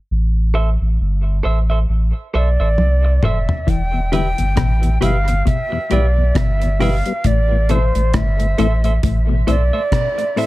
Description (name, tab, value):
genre	dub reggae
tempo	67 BPM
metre	4/4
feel	swing 58% on 16ths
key	E phrygian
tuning	A4 = 436 Hz
part	warm sub bass	bass	0.1-9.7 s	E1 to C2	-16 LUFS	equal	none
part	clean electric guitar	accompaniment	0.5-10.5 s	G4 to E5	-26 LUFS	right 3 dB	high-pass filter, low-pass filter, dub echo
part	breathy jazz flute	melody	2.4-10.5 s	C5 to G5	-22 LUFS	right 1 dB	low-pass filter, dub echo
part	deep reggae drum kit	drums	2.8-10.5 s	hi-hat, kick drum, rim click, toms	-20 LUFS	equal	none
part	semi-hollow electric guitar	arpeggios	3.7-10.5 s	A2 to E3	-24 LUFS	left 6 dB	none
part	mellow tonewheel organ	accompaniment	3.9-10.5 s	E2 to C4	-25 LUFS	left 3 dB	chorus vibrato, slow rotary speaker, high-pass filter, dub echo
room	little or no reverb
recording	none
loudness	-14 LUFS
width	side -18 dB against mid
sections	0.0-3.7 A section; 3.7-10.5 B section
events	filter sweep 0.0-3.7; drum fill 2.8-3.7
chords	0.1 Am; 3.7 Em; 7.2 Am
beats	| 0.10 1.00 1.89 2.78 | 3.68 4.57 5.46 6.36 | 7.25 8.14 9.03 9.92